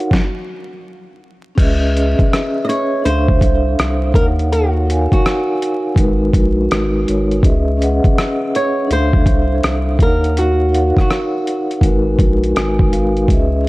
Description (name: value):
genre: lo-fi hip hop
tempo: 82 BPM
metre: 4/4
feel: swing 66% on 16ths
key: unclear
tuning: A4 = 439 Hz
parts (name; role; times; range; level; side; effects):
- flamenco guitar; melody; 0.0-12.9 s; F#4 to D#5; -21 LUFS; right 1 dB; tape echo
- vibraphone with soft mallets; accompaniment; 0.0-13.7 s; G#3 to G#5; -18 LUFS; equal; none
- dusty soul sampler-style drum kit; drums; 0.0-13.5 s; crash cymbal, hi-hat, kick drum, rim click, snare drum; -15 LUFS; equal; overdrive
- saturated sub bass; bass; 1.6-13.7 s; G#1 to D#2; -18 LUFS; equal; none
room: light reverb, digital ambience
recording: vinyl crackle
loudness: -13 LUFS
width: side -20 dB against mid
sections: 0.0-1.6 A section; 1.6-13.7 B section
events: stop 0.1-1.6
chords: 0.1 N.C.; 1.6 C#m7; 3.0 Dm7; 4.1 D#m7; 6.0 G#m7; 7.4 C#m7; 8.9 Dm7; 10.0 D#m7; 11.8 G#m7